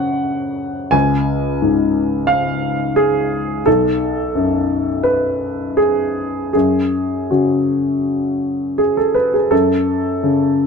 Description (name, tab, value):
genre	neoclassical minimalist piano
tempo	76-91 BPM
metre	4/4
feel	rubato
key	F# harmonic minor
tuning	A4 = 442 Hz
part	warm baby grand piano	solo	0.0-10.7 s	B1 to G#5	-15 LUFS	left 1 dB	none
room	moderate small room reverb, RT60 0.5 s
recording	dark, warm production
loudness	-15 LUFS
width	side -5 dB against mid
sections	0.0-9.5 A section; 9.5-10.7 A section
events	none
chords	0.0 F#5; 0.9 C#; 3.7 B5; 6.5 F#5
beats	0.27 | 0.94 1.61 2.29 2.97 | 3.66 4.34 5.05 5.77 | 6.54 7.30 8.05 8.79 | 9.52 10.21